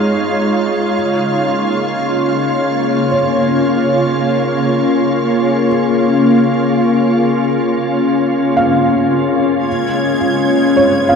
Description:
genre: ambient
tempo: 55 BPM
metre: 4/4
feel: straight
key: unclear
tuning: A4 = 441 Hz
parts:
  - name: soft additive organ-like pad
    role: sustained chords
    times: 0.0-11.2 s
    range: Db3 to F5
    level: -12 LUFS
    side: left 1 dB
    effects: ensemble chorus, built-in reverb
  - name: felt-muted upright piano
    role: arpeggios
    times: 0.0-11.2 s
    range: Ab4 to F5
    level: -20 LUFS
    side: right 2 dB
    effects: tape echo
  - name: rich chamber violin section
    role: texture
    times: 9.6-11.2 s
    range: Ab6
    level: -23 LUFS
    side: left 1 dB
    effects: none
room: wet cathedral reverb, RT60 6.6 s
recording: dark, warm production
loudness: -12 LUFS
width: side -6 dB against mid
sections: 0.0-9.7 A section; 9.7-11.2 B section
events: fade-in on felt piano 0.0-9.7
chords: 0.0 Dbadd9; 0.9 Bbm/Db; 9.7 Db7

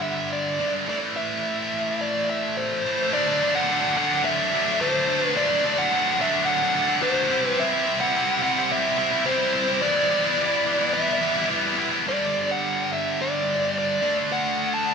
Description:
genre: rock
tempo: 107 BPM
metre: 4/4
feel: straight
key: unclear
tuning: A4 = 440 Hz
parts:
  - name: dark smooth lead guitar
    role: melody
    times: 0.0-14.9 s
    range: C5 to A5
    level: -24 LUFS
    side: equal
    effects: overdrive, slapback echo
  - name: scooped high-gain guitar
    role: riff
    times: 0.0-14.9 s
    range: G2 to E4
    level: -23 LUFS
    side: equal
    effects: distortion, slapback echo
room: wet scoring stage reverb, RT60 2.0 s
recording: big arena sound, lossy compression artefacts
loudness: -20 LUFS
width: side -6 dB against mid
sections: 0.0-3.1 A section; 3.1-12.1 B section; 12.1-14.9 C section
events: none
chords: 0.0 G5; 0.9 Am; 3.1 D; 7.3 C; 9.8 Em; 12.1 G5; 14.0 D

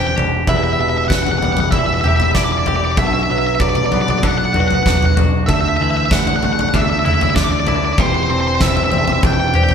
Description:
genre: post-rock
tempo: 96 BPM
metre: 4/4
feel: straight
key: E minor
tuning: A4 = 440 Hz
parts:
  - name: octave-fuzz lead guitar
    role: melody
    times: 0.0-9.7 s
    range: C5 to G5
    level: -19 LUFS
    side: equal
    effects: distortion
  - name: pedal steel guitar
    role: sustained chords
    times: 0.0-9.7 s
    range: D3 to B5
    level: -28 LUFS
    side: right 2 dB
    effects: none
  - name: twangy electric guitar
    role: arpeggios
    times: 0.0-9.7 s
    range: E2 to G4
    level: -23 LUFS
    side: left 3 dB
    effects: none
  - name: vibraphone with medium hard mallets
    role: arpeggios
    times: 0.0-9.7 s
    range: B4 to E5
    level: -25 LUFS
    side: right 4 dB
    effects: none
  - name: growling picked electric bass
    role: bass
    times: 0.0-9.7 s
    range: E1 to D2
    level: -21 LUFS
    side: equal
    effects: overdrive
  - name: huge arena drum kit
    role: drums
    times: 0.2-9.7 s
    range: kick drum, snare drum, toms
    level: -18 LUFS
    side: equal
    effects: none
room: wet stone room reverb, RT60 1.1 s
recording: band playing live in one room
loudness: -13 LUFS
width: side -7 dB against mid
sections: 0.0-9.7 A section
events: none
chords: 0.5 Em; 3.0 Bm; 5.5 Dsus2; 8.0 Cadd9/E

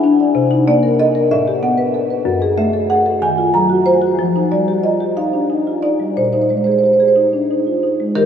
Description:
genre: classical, contemporary piece for solo marimba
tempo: 62 BPM (dotted quarters)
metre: 6/8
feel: straight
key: unclear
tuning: A4 = 440 Hz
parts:
  - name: marimba with soft mallets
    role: solo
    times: 0.0-8.3 s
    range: Gb2 to Bb5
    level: -13 LUFS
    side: equal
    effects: none
room: wet huge ambient reverb, RT60 8.6 s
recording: in a vast, echoing space, small room ambience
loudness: -13 LUFS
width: side -8 dB against mid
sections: 0.0-8.2 A section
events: none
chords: 0.4 Cm7; 1.3 Asus2; 2.3 Gbmadd9; 3.2 Ebmadd9; 4.2 Fsus2; 6.2 Bb9sus4

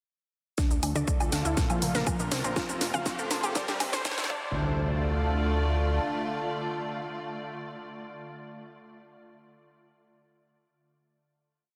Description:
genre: melodic techno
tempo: 121 BPM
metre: 4/4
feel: straight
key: D minor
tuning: A4 = 440 Hz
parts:
  - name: evolving wavetable pad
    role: sustained chords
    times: 0.9-7.7 s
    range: D3 to D5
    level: -38 LUFS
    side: equal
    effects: ensemble chorus, built-in reverb, sidechain pumping
  - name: unison pluck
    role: arpeggios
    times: 0.6-4.8 s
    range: F3 to A5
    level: -36 LUFS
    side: equal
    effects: sidechain pumping, dub echo
  - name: filtered dub chord stab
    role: stabs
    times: 0.6-7.7 s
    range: Bb2 to F4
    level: -41 LUFS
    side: equal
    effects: none
  - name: electronic kick drum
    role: drums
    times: 0.6-4.4 s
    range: none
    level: -32 LUFS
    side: equal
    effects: overdrive
  - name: house drum kit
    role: drums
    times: 0.6-4.3 s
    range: hi-hat, shaker, snare drum, toms, woodblock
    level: -34 LUFS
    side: equal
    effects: overdrive
  - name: riser and impact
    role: sound effects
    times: 2.2-7.7 s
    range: none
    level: -42 LUFS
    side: equal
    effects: none
  - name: airy breathy pad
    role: texture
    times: 0.6-8.2 s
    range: C4 to C6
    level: -39 LUFS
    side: equal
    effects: chorus, phaser, sidechain pumping
  - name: fat analog bass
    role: bass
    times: 0.7-6.0 s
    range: F1 to D2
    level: -33 LUFS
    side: equal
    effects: sidechain pumping
room: wet concert hall reverb, RT60 2.2 s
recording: dense, heavily limited modern master, high-pass filter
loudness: -29 LUFS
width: mono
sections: 0.6-4.5 build; 4.5-8.5 final chord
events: build-up 0.6-4.5; drum fill 0.6-4.5; filter sweep on synth arpeggio sound 0.6-4.5; filter sweep 0.6-4.5; riser 2.2-4.5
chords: 0.6 Dm; 1.6 Bb; 2.6 F; 3.6 C; 4.3 Dm

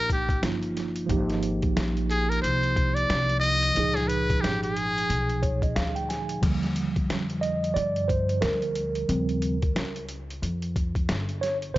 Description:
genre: hip hop, jazz-hop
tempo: 90 BPM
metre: 4/4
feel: swing 61% on 16ths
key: Eb major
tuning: A4 = 437 Hz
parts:
  - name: trumpet with metal mute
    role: melody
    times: 0.0-5.6 s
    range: G4 to Eb5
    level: -26 LUFS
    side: equal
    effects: none
  - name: mellow tine electric piano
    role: accompaniment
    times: 0.0-11.8 s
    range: Bb2 to Ab5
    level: -28 LUFS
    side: right 2 dB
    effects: medium stereo tremolo
  - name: upright bass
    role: bass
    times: 0.0-11.8 s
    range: G1 to G2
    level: -30 LUFS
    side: equal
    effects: none
  - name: boom bap sampler-style drum kit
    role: drums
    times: 0.1-11.8 s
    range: crash cymbal, hi-hat, kick drum, snare drum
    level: -30 LUFS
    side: equal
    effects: none
room: light reverb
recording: nothing above 7.7 kHz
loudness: -23 LUFS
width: side -17 dB against mid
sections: 0.0-6.4 A section; 6.4-11.8 A section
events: muted trumpet solo 0.0-6.4; tine electric piano fill 5.1-6.4; tine electric piano solo 6.4-11.8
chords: 0.0 Ebadd9; 1.1 Abmaj9; 3.8 Db9; 6.4 Ebmaj7; 9.1 Eb13

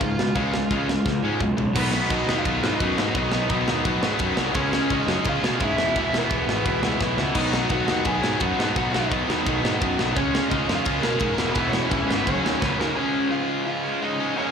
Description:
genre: punk rock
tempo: 171 BPM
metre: 4/4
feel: straight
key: unclear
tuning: A4 = 440 Hz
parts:
  - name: overdriven semi-hollow guitar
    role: melody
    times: 0.0-14.5 s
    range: A#3 to G#5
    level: -27 LUFS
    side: right 1 dB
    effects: slapback echo
  - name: distorted electric guitar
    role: riff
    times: 0.0-14.5 s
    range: E2 to C#4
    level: -26 LUFS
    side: left 12 dB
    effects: overdrive, slapback echo
  - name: distorted electric guitar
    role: riff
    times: 0.0-14.5 s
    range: F#2 to E#4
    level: -27 LUFS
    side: right 11 dB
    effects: overdrive, slapback echo
  - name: fuzz picked electric bass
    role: bass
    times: 0.0-12.9 s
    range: E1 to B2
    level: -28 LUFS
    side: equal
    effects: overdrive
  - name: tight metal drum kit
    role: drums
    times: 0.0-12.9 s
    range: crash cymbal, kick drum, ride cymbal, snare drum, toms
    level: -27 LUFS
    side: equal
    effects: none
room: little or no reverb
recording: live gig heard through the venue's PA, club reverb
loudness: -20 LUFS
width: side -7 dB against mid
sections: 0.0-1.8 A section; 1.8-13.0 B section; 13.0-14.5 C section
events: drum fill 1.1-1.8, 7.0-7.4, 12.6-13.0; half time 13.0-14.5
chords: 0.0 C#; 1.8 B; 4.6 C#; 5.8 E; 7.4 B; 10.2 C#; 11.4 E; 12.3 F#; 13.0 C#

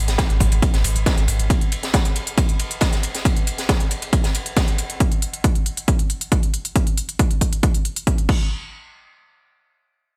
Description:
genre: driving peak-time techno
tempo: 137 BPM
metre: 4/4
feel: straight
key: unclear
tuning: A4 = 440 Hz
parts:
  - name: saturated sub bass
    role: bass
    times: 0.0-1.5 s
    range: G#1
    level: -23 LUFS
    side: equal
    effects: sidechain pumping, low-pass filter
  - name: open jazz drum kit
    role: drums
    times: 0.1-4.9 s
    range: ride cymbal, snare drum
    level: -30 LUFS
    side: equal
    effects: sidechain pumping on cymbals, high-pass filter on cymbals, small room reverb, high-pass filter on snare, high-pass filter on room, gated reverb
  - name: techno drum kit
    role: drums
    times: 0.1-8.4 s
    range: crash cymbal, hi-hat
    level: -30 LUFS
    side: equal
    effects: overdrive, small room reverb
  - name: electronic kick drum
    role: drums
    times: 0.2-8.4 s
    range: none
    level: -20 LUFS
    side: equal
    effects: overdrive, small room reverb
room: studio reverb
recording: bright 1980s-style digital production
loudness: -20 LUFS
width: mono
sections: 0.0-8.5 A section; 8.5-10.2 B section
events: none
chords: none

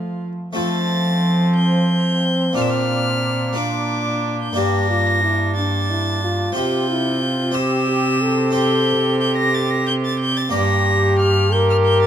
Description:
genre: classical, renaissance-style consort dance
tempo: 60 BPM (dotted quarters)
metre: 6/8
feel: straight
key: F major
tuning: A4 = 440 Hz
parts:
  - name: rich violin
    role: melody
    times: 0.0-12.1 s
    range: F5 to Bb6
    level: -23 LUFS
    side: left 1 dB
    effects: none
  - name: warm viola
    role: second line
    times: 0.0-12.1 s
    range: C4 to G4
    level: -27 LUFS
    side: right 6 dB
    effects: none
  - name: dark trombone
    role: accompaniment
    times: 0.0-12.1 s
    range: A3 to Bb4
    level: -22 LUFS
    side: left 2 dB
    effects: none
  - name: harpsichord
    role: accompaniment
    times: 0.0-12.1 s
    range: G2 to D5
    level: -26 LUFS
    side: left 1 dB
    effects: none
  - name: rich cello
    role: bass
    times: 0.0-12.1 s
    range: G2 to F3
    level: -20 LUFS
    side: right 1 dB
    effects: none
room: light reverb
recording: close, detailed microphones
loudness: -16 LUFS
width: side -9 dB against mid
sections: 0.6-12.1 A section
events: none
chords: 0.0 F; 2.6 Bb; 4.6 Gm; 6.6 Csus4; 7.6 C; 10.5 Gm

